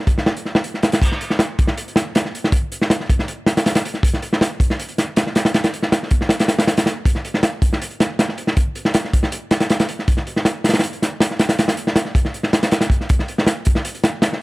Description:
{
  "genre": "drum and bass",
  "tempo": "159 BPM",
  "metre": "4/4",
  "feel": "straight",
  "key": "none",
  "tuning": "none",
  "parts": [
    { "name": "crunchy breakbeat drum kit", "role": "drums", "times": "0.0-14.4 s", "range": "crash cymbal, hi-hat, kick drum, snare drum", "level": "-16 LUFS", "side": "equal", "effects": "none" }
  ],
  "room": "little or no reverb",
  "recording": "none",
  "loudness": "-16 LUFS",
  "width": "side -22 dB against mid",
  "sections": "0.0-1.0 A section; 1.0-14.4 A section",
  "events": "drop 0.0-1.0, 1.0-14.4",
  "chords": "none",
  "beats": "0.26 0.64 | 1.02 1.40 1.77 2.15 | 2.53 2.90 3.28 3.66 | 4.04 4.41 4.79 5.17 | 5.55 5.92 6.30 6.68 | 7.06 7.43 7.81 8.19 | 8.56 8.94 9.32 9.70 | 10.07 10.45 10.83 11.21 | 11.58 11.96 12.34 12.72 | 13.09 13.47 13.85 14.23"
}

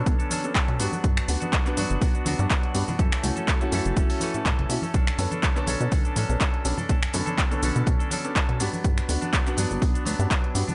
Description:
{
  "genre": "filtered disco house",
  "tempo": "123 BPM",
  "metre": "4/4",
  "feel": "swing 54% on 16ths",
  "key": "B minor",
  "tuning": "A4 = 442 Hz",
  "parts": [
    { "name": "clear concert grand piano", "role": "accompaniment", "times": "0.0-10.6 s", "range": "D3 to C#5", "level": "-34 LUFS", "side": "equal", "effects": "phaser, sidechain pumping, low-pass filter" },
    { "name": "direct-recorded clean electric guitar", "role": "riff", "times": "0.0-10.7 s", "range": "E3 to A4", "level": "-34 LUFS", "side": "equal", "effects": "sidechain pumping, low-pass filter" },
    { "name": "plucky analog bass", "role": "bass", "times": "0.0-10.6 s", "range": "F#1 to B2", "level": "-30 LUFS", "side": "equal", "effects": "sidechain pumping, low-pass filter" },
    { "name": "electronic kick drum", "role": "drums", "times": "0.1-10.4 s", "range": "none", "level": "-26 LUFS", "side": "equal", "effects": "none" },
    { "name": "house drum kit", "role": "drums", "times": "0.1-10.7 s", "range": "finger snaps, handclaps, hi-hat, shaker", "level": "-31 LUFS", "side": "equal", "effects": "overdrive, sidechain pumping on hats, sidechain pumping on perc" },
    { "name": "tambourine and congas", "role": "percussion", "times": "0.1-10.7 s", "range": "none", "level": "-37 LUFS", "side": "equal", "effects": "sidechain pumping on perc, low-pass filter on perc" }
  ],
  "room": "digital ambience",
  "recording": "nothing above 10.6 kHz",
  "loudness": "-24 LUFS",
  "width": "mono",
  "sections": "0.0-10.7 A section",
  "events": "none",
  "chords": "0.0 Bm9; 0.8 Gmaj7; 3.0 F#m7; 4.9 Bm9; 8.6 Gmaj7",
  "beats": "0.06 0.55 | 1.04 1.53 2.02 2.50 | 2.99 3.48 3.97 4.45 | 4.94 5.43 5.92 6.41 | 6.89 7.38 7.87 8.36 | 8.85 9.33 9.82 10.31"
}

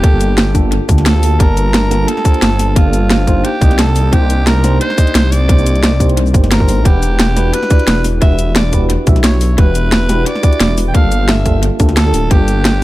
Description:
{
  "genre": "liquid drum and bass",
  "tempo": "176 BPM",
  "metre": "4/4",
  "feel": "straight",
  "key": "unclear",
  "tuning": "A4 = 440 Hz",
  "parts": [
    { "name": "raspy alto saxophone", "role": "melody", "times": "0.0-12.8 s", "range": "F4 to G5", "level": "-20 LUFS", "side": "right 1 dB", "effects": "tape echo" },
    { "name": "mellow FM electric piano", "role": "accompaniment", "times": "0.0-12.8 s", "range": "Bb3 to A5", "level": "-19 LUFS", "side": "right 1 dB", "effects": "chorus, tremolo, tape echo" },
    { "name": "dark detuned saw bass", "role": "bass", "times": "0.0-12.8 s", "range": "D1 to D2", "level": "-13 LUFS", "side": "equal", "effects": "none" },
    { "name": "drum and bass drum kit", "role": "drums", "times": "0.0-12.7 s", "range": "hi-hat, shaker, snare drum", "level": "-17 LUFS", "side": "equal", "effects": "overdrive, tape echo" },
    { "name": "electronic kick drum", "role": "drums", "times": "0.0-12.4 s", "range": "none", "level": "-10 LUFS", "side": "equal", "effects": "overdrive" }
  ],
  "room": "light reverb",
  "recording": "echo-heavy mix",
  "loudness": "-9 LUFS",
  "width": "side -17 dB against mid",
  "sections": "0.0-12.8 A section",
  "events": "none",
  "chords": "0.0 Gm9; 3.4 Cm9; 6.9 Em9; 10.9 Gm9",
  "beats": "| 0.04 0.38 0.72 1.06 | 1.40 1.74 2.08 2.42 | 2.76 3.10 3.45 3.79 | 4.13 4.47 4.81 5.15 | 5.49 5.83 6.17 6.51 | 6.86 7.20 7.54 7.88 | 8.22 8.56 8.90 9.24 | 9.58 9.92 10.26 10.61 | 10.95 11.29 11.63 11.97 | 12.31 12.65"
}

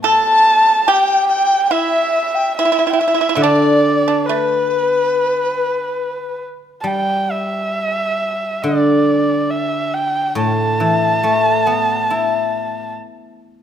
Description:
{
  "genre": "chinese traditional, Chinese chamber ensemble",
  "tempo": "70 BPM",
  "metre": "4/4",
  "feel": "rubato",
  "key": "D zhi mode",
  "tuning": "A4 = 440 Hz",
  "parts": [
    { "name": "dark erhu", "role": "melody", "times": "0.0-12.9 s", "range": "B4 to A5", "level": "-17 LUFS", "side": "right 2 dB", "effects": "none" },
    { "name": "mellow hollow dizi", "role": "second line", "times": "0.0-6.4 s", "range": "B4 to A5", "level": "-17 LUFS", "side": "left 5 dB", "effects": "none" },
    { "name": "pipa", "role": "second line", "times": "0.0-6.4 s", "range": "B3 to A4", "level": "-20 LUFS", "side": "right 6 dB", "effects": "none" },
    { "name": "guzheng", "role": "accompaniment", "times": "0.0-13.6 s", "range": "A2 to E4", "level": "-18 LUFS", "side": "left 1 dB", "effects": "none" }
  ],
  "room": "moderate recital hall reverb, RT60 1.4 s",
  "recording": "none",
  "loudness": "-14 LUFS",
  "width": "side -9 dB against mid",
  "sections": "0.0-13.6 A section",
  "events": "none",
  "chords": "none",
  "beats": "| 0.04 0.88 1.72 2.56 | 3.40 4.25 5.12 5.99 | 6.88 7.77 8.64 9.51 | 10.37 11.24 12.11 12.96"
}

